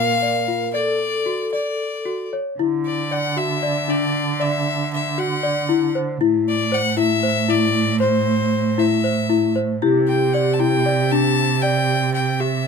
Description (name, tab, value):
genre	contemporary instrumental, chamber music in an uneven meter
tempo	232 BPM (eighths)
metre	7/8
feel	straight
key	D mixolydian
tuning	A4 = 440 Hz
part	bright violin	melody	0.0-12.7 s	C5 to A5	-23 LUFS	left 5 dB	none
part	vibraphone with medium mallets	second line	0.0-2.3, 9.8-12.7 s	G4 to Bb4	-23 LUFS	left 1 dB	none
part	small celesta	arpeggios	0.0-12.6 s	D4 to D5	-22 LUFS	left 5 dB	none
part	dark cello	bass	0.0-12.7 s	A2 to D3	-22 LUFS	right 7 dB	none
room	light reverb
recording	close, detailed microphones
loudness	-17 LUFS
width	side -5 dB against mid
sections	0.0-2.6 A section; 2.6-12.7 B section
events	break 0.7-2.6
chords	0.0 Bb; 0.7 D; 2.6 Dadd9; 6.2 Am; 9.8 Cadd9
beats	0.21 0.47 | 0.74 1.00 1.26 1.52 1.78 2.05 2.32 | 2.58 2.85 3.11 3.37 3.62 3.88 4.14 | 4.40 4.66 4.91 5.17 5.43 5.69 5.95 | 6.20 6.46 6.72 6.97 7.23 7.49 7.74 | 8.00 8.26 8.52 8.77 9.03 9.29 9.55 | 9.82 10.08 10.34 10.60 10.86 11.12 11.37 | 11.63 11.89 12.15 12.40 12.66